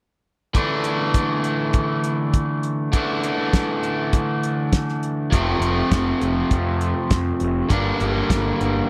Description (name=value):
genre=indie rock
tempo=101 BPM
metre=4/4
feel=straight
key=D minor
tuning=A4 = 439 Hz
part: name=overdriven electric guitar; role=riff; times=0.5-8.9 s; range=F2 to D4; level=-23 LUFS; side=equal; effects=none
part: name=cloth-damped thuddy drum kit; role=drums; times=0.5-8.7 s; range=hi-hat, kick drum, snare drum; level=-22 LUFS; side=equal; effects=none
part: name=fuzz picked electric bass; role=bass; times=5.3-8.8 s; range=F1 to F2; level=-26 LUFS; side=equal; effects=overdrive
room=little or no reverb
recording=dry, close 1970s-style studio recording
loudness=-21 LUFS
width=mono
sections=0.6-8.9 A section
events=none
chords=0.6 Dsus2; 5.3 F; 7.7 Gm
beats=| 0.55 1.15 1.74 2.34 | 2.94 3.53 4.13 4.73 | 5.32 5.92 6.51 7.11 | 7.70 8.30 8.89